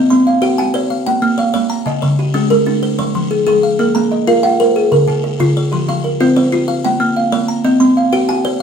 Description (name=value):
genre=southern african traditional, mbira-style interlocking cycle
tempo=125 BPM (dotted quarters)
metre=12/8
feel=straight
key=Bb equiheptatonic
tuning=A4 = 439 Hz
part: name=buzzing kalimba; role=arpeggios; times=0.0-8.6 s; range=Db3+43c to C6-29c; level=-14 LUFS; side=left 2 dB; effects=none
part: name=kalimba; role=arpeggios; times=0.0-8.6 s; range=Db3+43c to G5-43c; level=-16 LUFS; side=right 3 dB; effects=none
room=wet studio reverb, RT60 0.6 s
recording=heard from further back in the room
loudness=-12 LUFS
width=side -7 dB against mid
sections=0.0-8.6 A section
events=none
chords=0.0 Cm; 0.9 Bbm; 1.9 Db5; 2.8 Fm; 3.8 Bb5; 4.8 Db; 5.7 F5; 6.7 Bbm; 7.6 Cm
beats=0.43 0.91 1.39 | 1.87 2.35 2.83 3.31 | 3.79 4.27 4.75 5.24 | 5.72 6.20 6.68 7.16 | 7.64 8.13 8.61